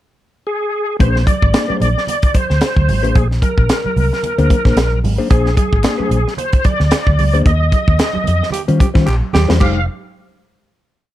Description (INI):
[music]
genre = funk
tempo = 112 BPM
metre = 4/4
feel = swing 56% on 16ths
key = unclear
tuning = A4 = 441 Hz
[part]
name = bright tonewheel organ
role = melody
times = 0.5-9.9 s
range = Ab4 to F5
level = -20 LUFS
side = equal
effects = overdrive, chorus vibrato, fast rotary speaker, plate reverb
[part]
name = mellow electric guitar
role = accompaniment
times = 1.0-9.8 s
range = G3 to D5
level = -20 LUFS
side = left 5 dB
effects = plate reverb
[part]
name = vintage muted fingered electric bass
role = bass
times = 1.0-9.9 s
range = F1 to Eb3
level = -15 LUFS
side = equal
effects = none
[part]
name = tight funk drum kit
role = drums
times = 1.0-9.8 s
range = crash cymbal, hi-hat, kick drum, snare drum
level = -15 LUFS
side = equal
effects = none
[part]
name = congas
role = percussion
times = 1.2-9.9 s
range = none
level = -26 LUFS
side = right 6 dB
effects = none
[part]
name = group handclap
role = percussion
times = 5.8-9.9 s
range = none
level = -34 LUFS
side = left 5 dB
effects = none
[part]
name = growling tenor saxophone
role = second line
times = 8.5-9.8 s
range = G4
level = -23 LUFS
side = right 4 dB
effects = plate reverb
[sound]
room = little or no reverb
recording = dark, warm production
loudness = -12 LUFS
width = side -14 dB against mid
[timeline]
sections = 0.0-1.0 pickup bar; 1.0-9.6 bridge; 9.6-11.1 final chord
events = band accent 7.5-9.6; drum fill 9.1-9.6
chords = 0.0 N.C.; 1.0 Bb9; 7.5 Eb13; 9.6 Fm9